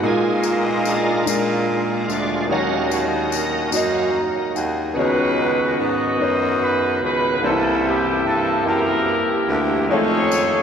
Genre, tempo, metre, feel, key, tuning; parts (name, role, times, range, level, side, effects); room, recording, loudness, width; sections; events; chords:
slow gospel; 49 BPM (dotted quarters); 6/8; straight; A4 = 440 Hz
clear baby grand piano; accompaniment; 0.0-10.6 s; Bb2 to Bb5; -23 LUFS; left 1 dB
bright tonewheel organ; sustained chords; 0.0-10.6 s; Eb3 to F5; -24 LUFS; right 2 dB; slow rotary speaker, overdrive, chorus vibrato
growling baritone saxophone; bass; 0.0-10.6 s; C2 to Bb2; -23 LUFS; equal
tambourine; percussion; 0.4-4.9, 10.3-10.6 s; -32 LUFS; left 9 dB
clear horn section; melody; 5.0-10.6 s; Eb4 to Eb5; -20 LUFS; equal
wet cathedral reverb, RT60 5.3 s; recorded in a church or concert hall; -17 LUFS; side -7 dB against mid
0.0-5.0 A section; 5.0-10.6 B section
tonewheel organ solo 0.0-5.0; grand piano fill 3.7-5.0
0.0 Bb7sus4; 1.3 Bb7; 2.5 Ebm7; 5.0 Db9sus4; 7.4 C7; 9.9 F7alt